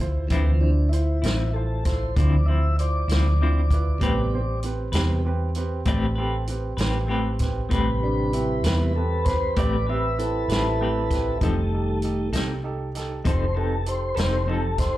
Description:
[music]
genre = slow blues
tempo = 65 BPM (dotted quarters)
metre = 12/8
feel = straight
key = A minor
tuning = A4 = 439 Hz
[part]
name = warm concert grand piano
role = accompaniment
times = 0.0-15.0 s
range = C4 to D5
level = -32 LUFS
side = right 5 dB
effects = plate reverb, slapback echo
[part]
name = vintage muted fingered electric bass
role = bass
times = 0.0-15.0 s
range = F1 to E2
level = -24 LUFS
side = equal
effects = none
[part]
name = clean electric guitar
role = accompaniment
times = 0.3-14.7 s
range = D3 to B4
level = -28 LUFS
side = left 3 dB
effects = tremolo, plate reverb, slapback echo
[part]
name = mellow tonewheel organ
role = sustained chords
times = 0.3-15.0 s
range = C3 to E5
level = -26 LUFS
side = equal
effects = slow rotary speaker, plate reverb
[part]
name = vintage drum kit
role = drums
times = 0.3-14.9 s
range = hi-hat, kick drum, snare drum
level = -27 LUFS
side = equal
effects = none
[sound]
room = light reverb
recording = live gig heard through the venue's PA, club reverb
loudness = -21 LUFS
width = side -15 dB against mid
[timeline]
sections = 0.0-15.0 A section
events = tonewheel organ solo 0.0-15.0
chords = 0.0 Dm9; 4.0 Am9; 11.4 F7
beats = | 0.31 1.24 2.16 3.09 | 4.02 4.94 5.87 6.79 | 7.72 8.64 9.56 10.49 | 11.41 12.33 13.26 14.18

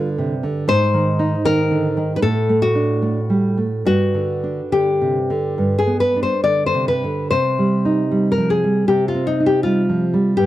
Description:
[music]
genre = romantic duo for nylon-string guitar and classical guitar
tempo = 68-82 BPM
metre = 4/4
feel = rubato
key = C minor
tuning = A4 = 441 Hz
[part]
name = nylon-string guitar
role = accompaniment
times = 0.0-10.5 s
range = G2 to Eb4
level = -18 LUFS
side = right 2 dB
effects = none
[part]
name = nylon-string guitar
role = melody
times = 0.7-10.5 s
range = Eb4 to D5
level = -19 LUFS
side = left 3 dB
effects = none
[sound]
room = studio reverb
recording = dry, close 1970s-style studio recording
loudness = -16 LUFS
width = side -14 dB against mid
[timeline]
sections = 0.0-10.5 A section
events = none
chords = 0.0 G5; 0.7 Ab; 2.2 D/A; 3.9 G; 7.3 Cm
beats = | 0.69 1.45 2.23 3.02 | 3.86 4.72 5.58 6.45 | 7.31 8.11 8.88 9.64 | 10.38

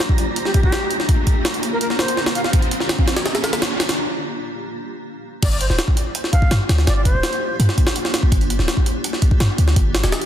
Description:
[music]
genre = drum and bass, jungle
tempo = 166 BPM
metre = 4/4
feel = straight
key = G minor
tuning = A4 = 440 Hz
[part]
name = jungle sampler-style drum kit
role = drums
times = 0.0-10.3 s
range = crash cymbal, hi-hat, kick drum, snare drum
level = -18 LUFS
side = equal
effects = none
[part]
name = riser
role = sound effects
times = 0.0-4.0 s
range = none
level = -28 LUFS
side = right 2 dB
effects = none
[part]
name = wind-like tuned noise texture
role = texture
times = 0.0-4.0 s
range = Bb5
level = -33 LUFS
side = right 4 dB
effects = built-in reverb
[part]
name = breathy bright concert flute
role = melody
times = 0.5-2.5, 5.4-7.6 s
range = G4 to F5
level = -27 LUFS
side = equal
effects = vintage 12-bit sampler grit, dub echo
[part]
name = warm 808-style bass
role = bass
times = 5.4-10.1 s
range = D1 to G2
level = -18 LUFS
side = equal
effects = tube saturation
[sound]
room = light reverb, digital ambience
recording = dense, heavily limited modern master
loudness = -16 LUFS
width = side -10 dB against mid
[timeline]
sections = 0.0-5.4 A section; 5.4-10.3 B section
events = build-up 0.0-5.4; riser 0.0-4.0; break 4.0-5.4; drop 5.4-10.3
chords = 0.0 Gm7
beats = 0.00 0.37 0.73 | 1.09 1.45 1.81 2.17 | 2.54 2.90 3.26 3.62 | 3.98 4.34 4.70 5.07 | 5.43 5.79 6.15 6.51 | 6.87 7.23 7.59 7.96 | 8.32 8.68 9.04 9.40 | 9.76 10.12

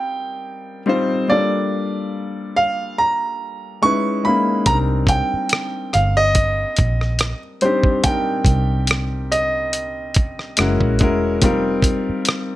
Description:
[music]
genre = R&B, neo-soul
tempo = 71 BPM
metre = 4/4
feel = swing 54% on 16ths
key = unclear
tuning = A4 = 440 Hz
[part]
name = clear baby grand piano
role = melody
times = 0.0-11.0 s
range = C5 to Db6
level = -20 LUFS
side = right 2 dB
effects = plate reverb
[part]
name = warm grand piano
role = accompaniment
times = 0.0-12.6 s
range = G3 to C5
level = -21 LUFS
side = left 2 dB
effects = plate reverb
[part]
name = vintage muted fingered electric bass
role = bass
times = 4.7-12.1 s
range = E1 to C2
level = -21 LUFS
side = right 1 dB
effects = none
[part]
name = dusty soul sampler-style drum kit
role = drums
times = 4.7-12.5 s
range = hi-hat, kick drum, rim click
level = -18 LUFS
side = equal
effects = none
[sound]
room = light reverb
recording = none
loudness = -16 LUFS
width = side -15 dB against mid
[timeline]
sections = 0.0-12.6 A section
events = none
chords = 0.0 F9sus4; 1.3 Gm9; 3.8 Dbm7; 4.7 Cm7; 10.6 F#9; 11.4 F9sus4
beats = 0.44 | 1.28 2.13 2.97 3.82 | 4.66 5.51 6.35 7.20 | 8.04 8.89 9.73 10.58 | 11.42 12.27

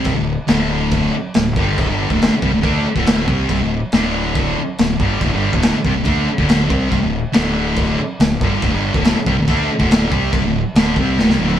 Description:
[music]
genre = garage rock duo or trio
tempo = 140 BPM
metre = 4/4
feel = straight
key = unclear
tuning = A4 = 440 Hz
[part]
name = thick fuzz guitar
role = riff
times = 0.0-11.6 s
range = D2 to D4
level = -17 LUFS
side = left 1 dB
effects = distortion
[part]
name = growling fingered electric bass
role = bass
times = 0.0-11.6 s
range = D1 to D2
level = -23 LUFS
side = right 1 dB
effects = overdrive
[part]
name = crunchy breakbeat drum kit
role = drums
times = 0.0-11.6 s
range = crash cymbal, kick drum, snare drum, toms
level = -18 LUFS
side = equal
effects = none
[sound]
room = light reverb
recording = band playing live in one room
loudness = -14 LUFS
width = side -10 dB against mid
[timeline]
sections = 0.0-11.6 A section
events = drum fill 11.2-11.6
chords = 0.0 D5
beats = | 0.06 0.49 0.92 1.35 | 1.78 2.22 2.65 3.08 | 3.51 3.94 4.37 4.80 | 5.22 5.65 6.08 6.51 | 6.93 7.36 7.79 8.21 | 8.64 9.06 9.49 9.91 | 10.34 10.76 11.19

